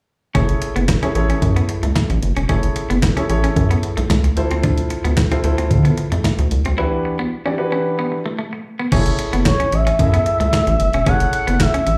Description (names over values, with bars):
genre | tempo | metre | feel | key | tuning
early-eighties boogie funk | 112 BPM | 4/4 | straight | unclear | A4 = 440 Hz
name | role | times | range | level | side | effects
warm concert grand piano | accompaniment | 0.3-11.7 s | E3 to E5 | -25 LUFS | equal | slapback echo
semi-hollow electric guitar | riff | 0.3-11.9 s | A3 to E4 | -28 LUFS | equal | lush chorus, slapback echo
rubbery square bass | bass | 0.3-12.0 s | E1 to D3 | -20 LUFS | equal | none
crisp 8-bit digital drum machine | drums | 0.3-12.0 s | crash cymbal, handclaps, hi-hat, kick drum, snare drum | -22 LUFS | equal | overdrive
expressive portamento lead | melody | 9.5-12.0 s | C#5 to F#5 | -21 LUFS | equal | chorus, slapback echo
room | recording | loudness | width
light reverb | live gig heard through the venue's PA, club reverb | -18 LUFS | mono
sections
0.3-8.9 A section; 8.9-12.0 B section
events
break 6.8-8.9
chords
0.3 F#m9; 4.4 Dm9; 6.8 Em9; 8.9 F#m9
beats
| 0.35 0.89 1.42 1.96 | 2.49 3.03 3.56 4.10 | 4.63 5.17 5.71 6.24 | 6.78 7.31 7.85 8.38 | 8.92 9.46 9.99 10.53 | 11.06 11.60